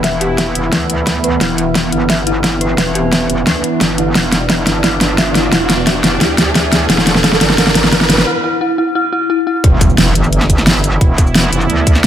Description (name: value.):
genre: dark technical drum and bass.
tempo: 175 BPM.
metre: 4/4.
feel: straight.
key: E minor.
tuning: A4 = 440 Hz.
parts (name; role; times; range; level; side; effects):
sweeping resonant pad; sustained chords; 0.0-12.1 s; E3 to E4; -19 LUFS; right 1 dB; chorus, sidechain pumping.
dark detuned synth bell; arpeggios; 0.0-9.6 s; E4 to E5; -19 LUFS; left 2 dB; chorus, phaser, sidechain pumping, low-pass filter, dub echo.
metallic wobble bass; bass; 0.0-12.1 s; E1 to D2; -18 LUFS; equal; chorus, sidechain pumping.
dubstep drum kit; drums; 0.0-12.1 s; hi-hat, shaker, snare drum; -13 LUFS; equal; overdrive.
electronic kick drum; drums; 0.0-11.9 s; none; -14 LUFS; equal; high-pass filter on kick, high-pass filter on room.
riser and impact; sound effects; 1.2-11.0 s; none; -20 LUFS; right 1 dB; none.
room: light reverb.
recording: none.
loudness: -10 LUFS.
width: side -10 dB against mid.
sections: 0.0-9.6 A section; 9.6-12.1 B section.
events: build-up 0.0-9.6; drum fill 0.0-8.3; riser 1.2-8.3; break 8.3-9.6; drop 9.6-12.1; impact 9.6-11.0.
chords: 0.0 Em.